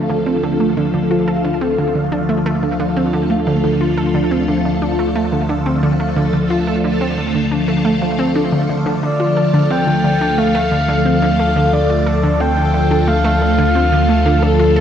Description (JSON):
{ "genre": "ambient, sequencer-driven space music", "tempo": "89 BPM", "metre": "4/4", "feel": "straight", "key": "D minor", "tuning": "A4 = 440 Hz", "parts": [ { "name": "phased string machine", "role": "sustained chords", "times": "0.0-14.8 s", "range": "D3 to A4", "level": "-16 LUFS", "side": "left 1 dB", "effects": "ensemble chorus, phaser" }, { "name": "concert harp", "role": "arpeggios", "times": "0.0-1.2 s", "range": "none", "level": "barely audible", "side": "none", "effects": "none" }, { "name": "analog pluck", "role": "riff", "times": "0.0-14.8 s", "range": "D3 to A4", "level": "-19 LUFS", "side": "right 2 dB", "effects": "chorus, cassette tape, tape echo" }, { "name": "round analog bass", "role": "bass", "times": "0.0-14.8 s", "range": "D2", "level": "-22 LUFS", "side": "equal", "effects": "tube saturation" }, { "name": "breathy flute-like synth lead", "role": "melody", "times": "9.0-14.8 s", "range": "A4 to G5", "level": "-18 LUFS", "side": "left 1 dB", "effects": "chorus, tremolo, vintage 12-bit sampler grit, tape echo" } ], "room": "wet concert hall reverb, RT60 2.1 s", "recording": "worn, warbling old tape, cassette tape, warbly pitch drift", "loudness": "-13 LUFS", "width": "side -9 dB against mid", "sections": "0.0-14.8 A section", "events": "fade-in on analog synth bass 0.0-14.8", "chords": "0.0 Dm", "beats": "0.27 | 0.94 1.62 2.29 2.97 | 3.64 4.31 4.99 5.66 | 6.34 7.01 7.68 8.36 | 9.03 9.71 10.38 11.06 | 11.73 12.40 13.08 13.75 | 14.43" }